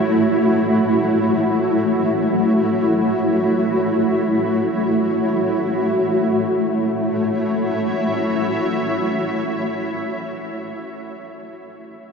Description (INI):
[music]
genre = ambient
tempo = free time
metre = none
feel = none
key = A major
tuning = A4 = 440 Hz
[part]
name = granular cloud pad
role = solo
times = 0.0-9.8 s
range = A3 to E5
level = -17 LUFS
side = equal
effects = built-in reverb, ping-pong delay
[sound]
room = wet huge ambient reverb, RT60 8.1 s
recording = nothing above 7.5 kHz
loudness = -17 LUFS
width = side -5 dB against mid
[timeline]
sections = 0.0-5.8 A section; 5.8-10.5 B section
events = none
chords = 0.0 A6